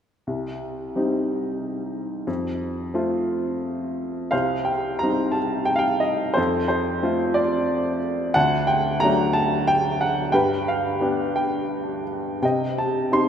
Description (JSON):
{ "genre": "classical, lyrical solo piano", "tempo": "89 BPM", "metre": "3/4", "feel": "uneven beats, rubato", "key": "C dorian", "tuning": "A4 = 440 Hz", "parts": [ { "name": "clear upright piano", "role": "solo", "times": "0.3-13.3 s", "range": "C2 to C6", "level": "-21 LUFS", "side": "equal", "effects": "none" } ], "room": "wet cathedral reverb, RT60 6.1 s", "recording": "recorded in a church or concert hall", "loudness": "-21 LUFS", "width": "side -8 dB against mid", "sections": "0.3-4.3 A section; 4.3-13.3 B section", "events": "none", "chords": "0.3 Cm; 2.3 F; 4.3 Cm; 6.4 F; 8.3 D; 10.3 G; 12.4 Cm", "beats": "| 0.27 0.96 1.63 | 2.28 2.94 3.62 | 4.33 5.03 5.71 | 6.38 7.04 7.70 | 8.35 9.01 9.67 | 10.34 11.02 11.72 | 12.43 13.12" }